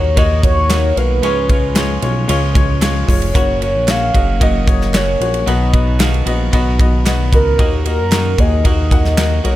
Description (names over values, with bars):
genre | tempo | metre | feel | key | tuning
piano-driven pop | 113 BPM | 4/4 | straight | F# major | A4 = 440 Hz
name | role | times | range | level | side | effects
mellow horn-like synth lead | melody | 0.0-9.6 s | A#4 to E#5 | -19 LUFS | right 1 dB | chorus, digital delay
clear upright piano | accompaniment | 0.0-9.6 s | G#2 to F#5 | -21 LUFS | left 5 dB | none
twelve-string electric guitar | riff | 0.0-9.6 s | F#2 to F#4 | -25 LUFS | right 5 dB | none
chorused synth bass | bass | 0.0-9.6 s | E#1 to F#2 | -16 LUFS | equal | none
modern studio drum kit | drums | 0.2-9.6 s | handclaps, hi-hat, kick drum, ride cymbal, snare drum | -16 LUFS | equal | none
group handclap | percussion | 0.7-9.3 s | none | -30 LUFS | right 6 dB | none
room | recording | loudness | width
small room ambience | none | -12 LUFS | side -14 dB against mid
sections
0.0-9.6 A section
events
none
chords
0.0 D#m; 1.2 C#; 3.4 F#; 5.5 B; 7.6 D#m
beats
0.17 0.70 | 1.23 1.76 2.29 2.82 | 3.35 3.88 4.41 4.94 | 5.47 6.00 6.53 7.06 | 7.59 8.12 8.65 9.18